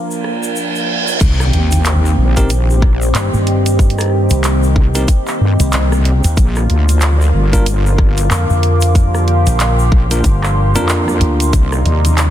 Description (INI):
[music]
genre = glitch hop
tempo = 93 BPM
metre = 4/4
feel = swing 59% on 16ths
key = C minor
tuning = A4 = 440 Hz
[part]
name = warm analog pad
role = sustained chords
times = 0.0-12.3 s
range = C3 to Bb4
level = -22 LUFS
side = right 2 dB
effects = lush chorus, sidechain pumping
[part]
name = bell-like tine electric piano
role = stabs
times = 0.0-11.5 s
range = Bb3 to Bb4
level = -22 LUFS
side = equal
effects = vintage 12-bit sampler grit, sidechain pumping, ping-pong delay
[part]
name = reverse cymbal and impact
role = sound effects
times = 0.2-3.8 s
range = none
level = -21 LUFS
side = right 2 dB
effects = none
[part]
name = deep dark ambient pad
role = texture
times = 0.0-12.3 s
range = C4 to D6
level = -22 LUFS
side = left 1 dB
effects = chorus, built-in reverb, sidechain pumping
[part]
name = egg shaker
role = percussion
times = 0.1-12.3 s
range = none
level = -29 LUFS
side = left 3 dB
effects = none
[part]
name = drum and bass drum kit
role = drums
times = 0.2-12.3 s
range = crash cymbal, handclaps, hi-hat, rim click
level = -21 LUFS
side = right 1 dB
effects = none
[part]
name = wobble bass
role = bass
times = 1.2-12.3 s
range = G1 to G2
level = -13 LUFS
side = equal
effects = chorus, tube saturation
[part]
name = electronic kick drum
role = drums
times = 1.2-11.7 s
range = none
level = -12 LUFS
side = equal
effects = none
[part]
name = slap bass with an envelope filter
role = bass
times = 3.1-11.5 s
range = G1 to G2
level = -13 LUFS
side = equal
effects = none
[sound]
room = digital ambience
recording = dense, heavily limited modern master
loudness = -11 LUFS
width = side -12 dB against mid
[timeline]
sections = 0.0-1.2 A section; 1.2-12.3 B section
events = reverse cymbal 0.2-1.2; drop 1.2-12.3; impact 1.2-3.8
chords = 0.0 Bb; 1.2 Cm7; 6.4 Bb; 11.5 Cm7